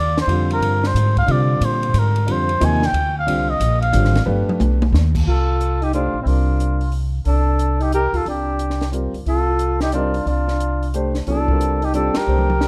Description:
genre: modal jazz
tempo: 180 BPM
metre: 3/4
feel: swing 64% on 8ths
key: F dorian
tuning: A4 = 441 Hz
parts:
  - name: trumpet with cup mute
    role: melody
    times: 0.0-12.7 s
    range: E4 to Ab5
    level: -25 LUFS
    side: equal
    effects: none
  - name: upright bass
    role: bass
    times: 0.0-12.7 s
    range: G1 to C3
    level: -21 LUFS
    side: equal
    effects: none
  - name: compact cocktail drum kit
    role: drums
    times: 0.2-12.7 s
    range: crash cymbal, hi-hat, kick drum, ride cymbal, snare drum, toms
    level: -29 LUFS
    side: equal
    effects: none
  - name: warm grand piano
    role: accompaniment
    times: 0.3-6.8, 8.9-12.5 s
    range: C3 to C5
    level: -26 LUFS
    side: equal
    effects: none
  - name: warm alto saxophone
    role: second line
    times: 5.3-12.7 s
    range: C4 to G4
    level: -26 LUFS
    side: equal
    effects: none
room: light reverb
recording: dark, warm production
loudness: -19 LUFS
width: mono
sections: 0.0-5.3 A section; 5.3-12.7 B section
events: muted trumpet solo 0.0-5.3; drum fill 4.3-4.9, 12.3-12.7; band accent 12.1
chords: 0.0 Fm69; 4.3 G; 5.3 C9sus4; 7.3 Gsus2/C; 9.3 Csus4; 11.3 Gmadd9/C

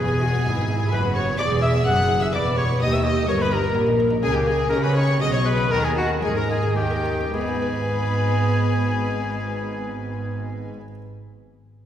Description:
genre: classical, baroque-style concerto movement with solo episodes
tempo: 105-128 BPM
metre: 3/4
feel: straight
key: G# minor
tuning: A4 = 440 Hz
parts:
  - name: rich chamber violin section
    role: melody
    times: 0.0-10.7 s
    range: F#5 to F#6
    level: -32 LUFS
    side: left 4 dB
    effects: none
  - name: warm oboe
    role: melody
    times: 0.0-10.7 s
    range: F#4 to F#5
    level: -27 LUFS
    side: left 1 dB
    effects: none
  - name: rich chamber violin section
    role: second line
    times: 0.0-10.7 s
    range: F#4 to F#5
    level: -30 LUFS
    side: left 4 dB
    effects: none
  - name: buff-stop harpsichord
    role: accompaniment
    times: 0.0-11.0 s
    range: D#2 to B4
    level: -31 LUFS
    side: equal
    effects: none
  - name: rich chamber viola section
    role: accompaniment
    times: 0.0-10.7 s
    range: B3 to B4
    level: -27 LUFS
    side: left 1 dB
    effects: none
  - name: clear chamber double bass section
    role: bass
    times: 0.0-10.7 s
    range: E1 to C#3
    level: -25 LUFS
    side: right 1 dB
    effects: none
  - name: rich chamber cello section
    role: bass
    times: 0.0-10.7 s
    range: D#2 to C#4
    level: -27 LUFS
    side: right 2 dB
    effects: none
room: wet concert hall reverb, RT60 2.1 s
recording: heard from further back in the room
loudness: -19 LUFS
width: side -10 dB against mid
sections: 0.0-7.3 A section; 7.3-10.7 B section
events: slowing down 3.5-7.3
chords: 0.0 E; 2.8 D#; 4.2 D#7/C#; 5.2 G#m/B; 5.7 D#7sus4; 6.8 D#7; 7.3 G#m

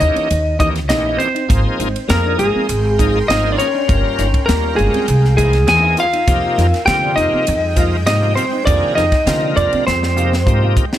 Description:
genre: electric jazz fusion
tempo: 100 BPM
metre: 4/4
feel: straight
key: F minor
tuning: A4 = 439 Hz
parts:
  - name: lightly driven lead guitar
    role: melody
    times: 0.0-10.7 s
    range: Ab4 to G#5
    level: -17 LUFS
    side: equal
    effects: none
  - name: hollow-body jazz guitar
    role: second line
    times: 0.0-10.7 s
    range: Ab3 to G#4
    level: -25 LUFS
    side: left 3 dB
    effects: none
  - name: bright tonewheel organ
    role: accompaniment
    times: 0.0-10.9 s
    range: C3 to Eb5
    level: -23 LUFS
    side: equal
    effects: chorus vibrato, slow rotary speaker
  - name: mellow electric guitar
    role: stabs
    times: 0.0-11.0 s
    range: Fb3 to F4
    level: -27 LUFS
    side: right 3 dB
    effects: lush chorus
  - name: upright bass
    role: bass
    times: 0.0-10.7 s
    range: G1 to D3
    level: -18 LUFS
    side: equal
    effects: none
  - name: crisp fusion drum kit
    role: drums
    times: 0.0-11.0 s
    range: hi-hat, kick drum, ride cymbal, snare drum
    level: -20 LUFS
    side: equal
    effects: none
  - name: shimmering ambient pad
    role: sustained chords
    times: 2.0-11.0 s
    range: Ab3 to E6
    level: -30 LUFS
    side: equal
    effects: chorus, built-in reverb
room: light reverb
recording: none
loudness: -13 LUFS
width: side -12 dB against mid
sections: 0.0-11.0 A section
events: drum fill 9.9-11.0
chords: 0.0 Eb7b9; 1.5 Abmaj9; 3.9 Gm7b5; 5.1 C7alt; 6.3 Fm9

